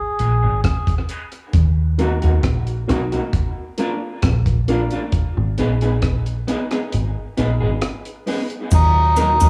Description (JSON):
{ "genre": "dub reggae", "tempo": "67 BPM", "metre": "4/4", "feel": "straight", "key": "Eb harmonic minor", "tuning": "A4 = 441 Hz", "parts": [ { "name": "melodica", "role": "melody", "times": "0.0-0.6, 8.7-9.5 s", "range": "Eb4 to Ab4", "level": "-21 LUFS", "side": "equal", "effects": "low-pass filter, tape echo" }, { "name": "electric guitar at the edge of break-up", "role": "accompaniment", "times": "0.2-9.5 s", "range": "Gb3 to Ab4", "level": "-27 LUFS", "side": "equal", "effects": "spring reverb, high-pass filter, low-pass filter, cassette tape, tape echo" }, { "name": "dark grand piano", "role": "stabs", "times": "0.2-9.3 s", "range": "Bb3 to Cb5", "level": "-31 LUFS", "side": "equal", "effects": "high-pass filter, low-pass filter, cassette tape, tape echo" }, { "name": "deep dub fingered electric bass", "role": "bass", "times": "0.2-9.5 s", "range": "Ab1 to Eb2", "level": "-20 LUFS", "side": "equal", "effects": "transformer saturation" }, { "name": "deep reggae drum kit", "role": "drums", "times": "0.2-9.5 s", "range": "crash cymbal, hi-hat, kick drum, rim click", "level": "-24 LUFS", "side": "equal", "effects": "none" }, { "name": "muted trombone section", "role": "second line", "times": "8.7-9.5 s", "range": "Bb2 to Eb4", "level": "-33 LUFS", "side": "equal", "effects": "cassette tape, tape echo" }, { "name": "cabasa", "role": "percussion", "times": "8.7-9.5 s", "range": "none", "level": "-34 LUFS", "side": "equal", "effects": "none" } ], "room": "light reverb", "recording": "home recording on cassette, small room reverb", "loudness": "-19 LUFS", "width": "mono", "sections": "0.0-8.7 A section", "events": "break 6.9-8.7", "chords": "0.0 Abm; 1.5 Ebm; 3.3 Bb; 5.1 Abm; 8.7 Ebm" }